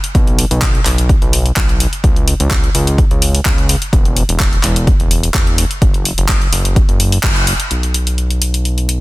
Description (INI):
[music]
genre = progressive house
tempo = 127 BPM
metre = 4/4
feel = straight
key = unclear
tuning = A4 = 440 Hz
[part]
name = deep house drum kit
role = drums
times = 0.0-9.0 s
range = handclaps, hi-hat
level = -18 LUFS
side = left 1 dB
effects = small room reverb
[part]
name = fat analog bass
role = bass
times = 0.1-9.0 s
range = E1 to C#2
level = -16 LUFS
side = equal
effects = sidechain pumping
[part]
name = electronic kick drum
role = drums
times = 0.1-7.3 s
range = none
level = -14 LUFS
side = equal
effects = small room reverb
[sound]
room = little or no reverb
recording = dense, heavily limited modern master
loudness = -11 LUFS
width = side -19 dB against mid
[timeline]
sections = 0.0-7.7 A section; 7.7-9.0 B section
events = band accent 7.2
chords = none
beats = | 0.15 0.62 1.09 1.57 | 2.04 2.51 2.98 3.46 | 3.93 4.40 4.87 5.35 | 5.82 6.29 6.76 7.24 | 7.71 8.18 8.65